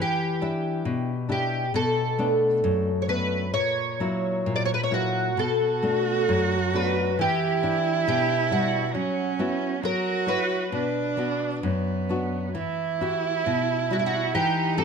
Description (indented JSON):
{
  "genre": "fado-style ballad",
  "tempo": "67 BPM",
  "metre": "2/4",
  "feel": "rubato",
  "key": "B minor",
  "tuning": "A4 = 440 Hz",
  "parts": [
    { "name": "fingerpicked twelve-string acoustic guitar", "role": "melody", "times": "0.0-14.8 s", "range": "E4 to D5", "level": "-26 LUFS", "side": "equal", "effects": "analog chorus" },
    { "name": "nylon-string guitar", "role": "accompaniment", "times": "0.0-14.8 s", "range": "F#2 to C#5", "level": "-27 LUFS", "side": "left 2 dB", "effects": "none" },
    { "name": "dark cello", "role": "second line", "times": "5.4-14.8 s", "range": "B3 to F#4", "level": "-26 LUFS", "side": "right 7 dB", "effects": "none" }
  ],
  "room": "light reverb",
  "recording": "close, detailed microphones",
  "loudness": "-22 LUFS",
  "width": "side -6 dB against mid",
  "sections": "0.0-12.6 A section; 12.6-14.8 B section",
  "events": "none",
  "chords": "0.0 Em7; 1.7 Bm7; 3.5 F#7/A#; 5.4 Bm7; 7.2 Em7; 8.9 F#7sus4; 9.8 F#7; 10.7 Bm; 12.6 Emadd9; 14.3 C/E",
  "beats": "0.86 | 1.74 2.63 | 3.54 4.46 | 5.38 6.29 | 7.19 8.08 | 8.95 9.82 | 10.71 11.63 | 12.55 13.46 | 14.34"
}